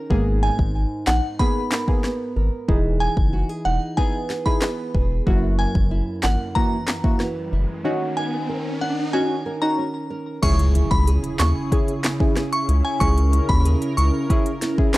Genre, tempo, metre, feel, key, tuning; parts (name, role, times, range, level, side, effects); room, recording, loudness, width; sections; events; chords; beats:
dancehall; 93 BPM; 4/4; straight; A4 = 440 Hz
nylon-string guitar; arpeggios; 0.0-15.0 s; F#2 to A#4; -28 LUFS; right 2 dB; tape echo
deep mellow chord stab; accompaniment; 0.1-15.0 s; A#3 to G#4; -26 LUFS; equal; chorus, sidechain pumping
saturated sub bass; bass; 0.1-14.1 s; E1 to D#2; -20 LUFS; equal
afro-pop drum kit; drums; 0.1-15.0 s; crash cymbal, handclaps, hi-hat, kick drum, rim click, snare drum; -21 LUFS; equal
glassy synth bell; melody; 0.4-14.1 s; F#5 to C#6; -27 LUFS; equal; chorus, phaser, tape echo
riser and impact; sound effects; 7.1-13.0 s; -31 LUFS; equal
lush unison pad; sustained chords; 10.4-15.0 s; C#3 to A#4; -30 LUFS; right 1 dB; chorus, phaser, sidechain pumping
little or no reverb; dry, gritty hardware recording, transformer saturation; -18 LUFS; side -18 dB against mid
0.0-10.4 A section; 10.4-15.0 B section
riser 7.1-10.4; break 7.8-10.4; impact 10.4-13.0
0.1 G#madd9; 2.7 Emaj7; 5.3 F#7; 7.8 D#m7; 10.4 C#m
| 0.11 0.75 1.40 2.04 | 2.69 3.33 3.98 4.62 | 5.27 5.91 6.56 7.20 | 7.85 8.49 9.14 9.78 | 10.43 11.07 11.72 12.36 | 13.01 13.65 14.30 14.95